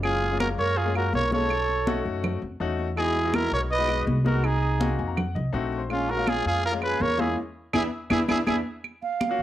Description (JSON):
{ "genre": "Afro-Cuban jazz", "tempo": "164 BPM", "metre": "4/4", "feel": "straight", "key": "unclear", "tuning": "A4 = 441 Hz", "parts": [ { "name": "growling trumpet", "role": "melody", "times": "0.0-8.6 s", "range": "F4 to D#5", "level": "-27 LUFS", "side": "left 1 dB", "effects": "cassette tape" }, { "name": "breathy mellow concert flute", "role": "second line", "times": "0.0-9.4 s", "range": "Db4 to F5", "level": "-29 LUFS", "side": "right 7 dB", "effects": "cassette tape" }, { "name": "clear grand piano", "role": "accompaniment", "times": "0.0-9.4 s", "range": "Ab3 to Bb5", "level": "-31 LUFS", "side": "left 7 dB", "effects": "cassette tape" }, { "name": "upright bass", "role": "bass", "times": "0.0-9.4 s", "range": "Gb1 to Gb2", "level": "-29 LUFS", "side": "equal", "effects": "none" }, { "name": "claves", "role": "percussion", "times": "0.0-9.4 s", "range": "none", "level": "-35 LUFS", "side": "right 8 dB", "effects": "none" }, { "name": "congas", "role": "percussion", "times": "0.0-9.4 s", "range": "none", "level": "-30 LUFS", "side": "equal", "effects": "none" } ], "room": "light reverb, studio reverb", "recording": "home recording on cassette", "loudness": "-23 LUFS", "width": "side -12 dB against mid", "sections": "0.0-8.8 A section", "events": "grand piano fill 4.8-5.9, 7.7-8.8; band accent 7.4-8.8", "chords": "0.0 Gbmaj9; 1.5 B9; 3.0 Emaj7; 4.4 Cm7b5; 5.2 F7b9; 5.9 Bbm7; 7.4 E7; 8.8 Ebm9 (rootless)" }